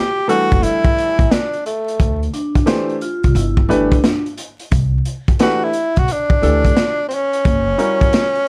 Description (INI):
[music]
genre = hip hop, jazz-hop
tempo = 88 BPM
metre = 4/4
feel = swing 66% on 16ths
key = unclear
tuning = A4 = 441 Hz
[part]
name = breathy tenor saxophone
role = melody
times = 0.0-8.5 s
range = A3 to G4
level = -20 LUFS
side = equal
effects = none
[part]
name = warm upright piano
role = accompaniment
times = 0.3-8.2 s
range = E3 to C5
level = -22 LUFS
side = equal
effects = none
[part]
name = crunchy breakbeat drum kit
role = drums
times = 0.3-8.5 s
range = hi-hat, kick drum, snare drum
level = -19 LUFS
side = equal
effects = none
[part]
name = upright bass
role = bass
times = 0.5-7.7 s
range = F#1 to D2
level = -21 LUFS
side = equal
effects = none
[part]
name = vibraphone with soft mallets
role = second line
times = 2.3-4.2 s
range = D4 to E#4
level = -24 LUFS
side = equal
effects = none
[sound]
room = little or no reverb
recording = dry, gritty hardware recording, vinyl crackle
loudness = -16 LUFS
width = mono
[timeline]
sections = 0.0-8.5 A section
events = none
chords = 0.0 Gsus2; 2.0 D5; 3.4 Gadd9; 4.7 Cmaj7; 7.4 F#7b9